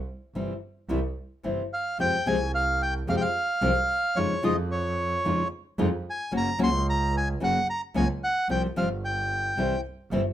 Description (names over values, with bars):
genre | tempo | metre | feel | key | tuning
tango | 111 BPM | 4/4 | rubato | F minor | A4 = 439 Hz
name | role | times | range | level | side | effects
clear double bass | bass | 0.0-10.3 s | Gb1 to F2 | -30 LUFS | right 2 dB | none
nylon-string guitar | accompaniment | 0.3-10.2 s | C3 to G4 | -27 LUFS | left 2 dB | none
bandoneon | melody | 1.7-9.8 s | Db5 to C6 | -26 LUFS | right 1 dB | none
room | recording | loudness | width
light reverb | minimal, uncompressed stereo recording | -24 LUFS | side -11 dB against mid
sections
0.0-2.0 A section; 2.0-10.3 B section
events
none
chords
0.0 C; 2.0 Fmadd9; 4.2 Dbadd9/F; 6.3 Gb; 8.5 Csus4; 9.6 C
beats
0.35 0.90 1.44 | 1.99 2.53 3.08 3.62 | 4.16 4.70 5.24 5.78 | 6.32 6.86 7.40 7.94 | 8.48 9.03 9.57 10.11